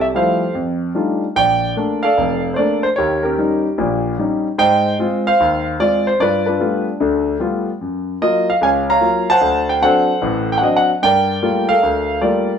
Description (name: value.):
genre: solo jazz.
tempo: 149 BPM.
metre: 4/4.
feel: swing 67% on 8ths.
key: Bb major.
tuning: A4 = 437 Hz.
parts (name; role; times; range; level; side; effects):
warm concert grand piano; solo; 0.0-12.6 s; F1 to Bb5; -14 LUFS; equal; none.
room: wet studio reverb, RT60 0.8 s.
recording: band playing live in one room.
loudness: -14 LUFS.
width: side -7 dB against mid.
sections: 0.0-1.4 A section; 1.4-12.6 B section.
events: none.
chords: 0.0 Fmaj9; 0.5 F13; 1.4 Bbmaj7; 3.0 Eb7; 4.6 Ab6; 6.2 G9; 7.8 Gbmaj7; 9.4 D7; 11.0 Gm9.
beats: 0.14 0.55 0.95 | 1.36 1.76 2.16 2.57 | 2.97 3.38 3.78 4.18 | 4.58 4.99 5.39 5.79 | 6.20 6.60 7.00 7.40 | 7.80 8.21 8.61 9.01 | 9.41 9.82 10.22 10.62 | 11.02 11.43 11.83 12.23.